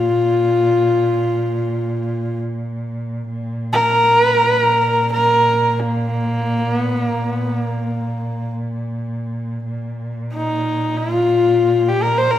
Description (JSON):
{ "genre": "mongolian traditional, Mongolian folk", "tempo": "free time", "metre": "none", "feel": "none", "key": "unclear", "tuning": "A4 = 440 Hz", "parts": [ { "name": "rich horsehead fiddle", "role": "melody", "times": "0.0-12.4 s", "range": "Bb3 to C5", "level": "-16 LUFS", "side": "left 1 dB", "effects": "none" }, { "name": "dark cello", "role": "drone", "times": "0.0-12.4 s", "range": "Bb2", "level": "-22 LUFS", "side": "right 1 dB", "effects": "none" } ], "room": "wet recital hall reverb, RT60 1.4 s", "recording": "none", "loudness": "-16 LUFS", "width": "side -12 dB against mid", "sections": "0.0-9.7 A section; 9.7-12.4 A section", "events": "none", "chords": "none" }